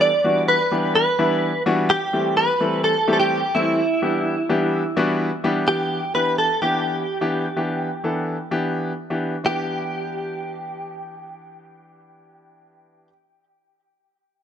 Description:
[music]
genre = pop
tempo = 127 BPM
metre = 4/4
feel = straight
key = E minor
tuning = A4 = 439 Hz
[part]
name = direct-recorded clean electric guitar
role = melody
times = 0.0-13.1 s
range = E4 to D5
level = -21 LUFS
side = right 1 dB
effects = ensemble chorus, dub echo
[part]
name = warm grand piano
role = accompaniment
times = 0.0-13.1 s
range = E3 to A4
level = -22 LUFS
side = left 1 dB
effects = none
[sound]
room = light reverb, studio reverb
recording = none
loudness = -19 LUFS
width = side -9 dB against mid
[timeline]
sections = 0.0-5.7 A section; 5.7-9.5 B section; 9.5-13.2 C section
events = none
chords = 0.0 Em7; 1.9 Am7; 3.8 Em7

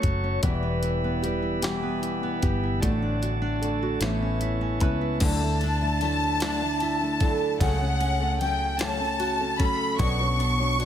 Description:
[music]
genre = six-eight pop ballad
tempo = 50 BPM (dotted quarters)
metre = 6/8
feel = straight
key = D major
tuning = A4 = 440 Hz
[part]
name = nylon-string guitar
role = accompaniment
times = 0.0-10.9 s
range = B2 to B4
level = -29 LUFS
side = right 4 dB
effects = none
[part]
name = tonewheel organ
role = sustained chords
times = 0.0-5.2 s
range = E4 to C#6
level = -33 LUFS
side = right 2 dB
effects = stopped rotary speaker
[part]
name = vintage muted fingered electric bass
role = bass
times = 0.0-10.9 s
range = E1 to D2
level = -28 LUFS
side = equal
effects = none
[part]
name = jungle sampler-style drum kit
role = drums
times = 0.0-10.9 s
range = crash cymbal, hi-hat, kick drum, ride cymbal, snare drum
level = -28 LUFS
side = equal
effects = none
[part]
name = fingerpicked steel-string acoustic guitar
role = arpeggios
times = 0.4-10.9 s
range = E2 to C#5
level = -32 LUFS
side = left 6 dB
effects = none
[part]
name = warm studio violin section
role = second line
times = 5.2-10.9 s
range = F#5 to C#6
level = -27 LUFS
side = left 1 dB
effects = none
[sound]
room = little or no reverb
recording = none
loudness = -23 LUFS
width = side -10 dB against mid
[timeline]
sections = 0.0-5.2 A section; 5.2-10.9 B section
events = none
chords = 0.4 Em; 2.8 D/A; 4.0 Aadd9; 5.2 Dadd9; 7.6 F#m/C#; 10.0 Bmadd9

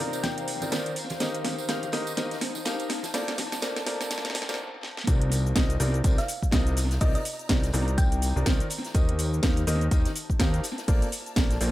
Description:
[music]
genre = piano house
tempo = 124 BPM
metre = 4/4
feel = swing 58% on 16ths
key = C dorian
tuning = A4 = 440 Hz
[part]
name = clear upright piano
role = riff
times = 0.0-11.7 s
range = C3 to F5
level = -32 LUFS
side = left 1 dB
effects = vintage 12-bit sampler grit, sidechain pumping, low-pass filter, analog delay
[part]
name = ethereal airy pad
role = texture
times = 0.0-11.7 s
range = Bb3 to Bb5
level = -39 LUFS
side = left 2 dB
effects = ensemble chorus, built-in reverb, sidechain pumping
[part]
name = house drum kit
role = drums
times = 0.1-11.7 s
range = hi-hat, shaker, snare drum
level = -31 LUFS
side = right 1 dB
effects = small room ambience, analog delay
[part]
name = tambourine and congas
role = percussion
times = 0.1-4.6 s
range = none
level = -39 LUFS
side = right 3 dB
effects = analog delay
[part]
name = thumb-piano-like synth pluck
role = melody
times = 0.2-0.6, 6.2-8.4 s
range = Eb5 to G5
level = -36 LUFS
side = left 1 dB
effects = chorus, analog delay
[part]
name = big rock drum kit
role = drums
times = 0.2-11.7 s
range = hi-hat, snare drum, tambourine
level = -40 LUFS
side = left 1 dB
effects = high-pass filter on hats, small room ambience, high-pass filter on snare, high-pass filter on perc, high-pass filter on room
[part]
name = fat analog bass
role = bass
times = 5.1-11.7 s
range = Bb1 to Eb2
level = -26 LUFS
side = equal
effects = sidechain pumping
[part]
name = electronic kick drum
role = drums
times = 5.1-11.5 s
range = none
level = -24 LUFS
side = equal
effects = small room ambience
[sound]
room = light reverb, small room ambience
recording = echo-heavy mix, high-pass filter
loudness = -24 LUFS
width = side -16 dB against mid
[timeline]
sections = 0.0-5.1 A section; 5.1-11.7 B section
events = build-up 0.0-5.1; drum fill 0.0-4.6, 4.8; break 4.6-5.1; drop 5.1-11.7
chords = 0.0 Cm11; 1.0 Eb6; 2.9 Bbmaj9; 5.1 Cm11; 8.7 Eb6; 10.6 Bbmaj9

